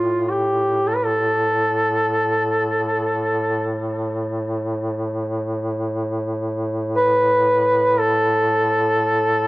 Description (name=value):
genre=caucasian folk, Caucasian lament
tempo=free time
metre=none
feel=none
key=unclear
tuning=A4 = 440 Hz
part: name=warm duduk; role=melody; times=0.0-9.5 s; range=F4 to B4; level=-17 LUFS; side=equal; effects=none
part: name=warm duduk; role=drone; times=0.0-9.5 s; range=A2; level=-24 LUFS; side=equal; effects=cassette tape
room=light reverb, small room reverb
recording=home recording on cassette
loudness=-18 LUFS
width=side -19 dB against mid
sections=0.0-9.5 A section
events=none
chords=none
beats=free time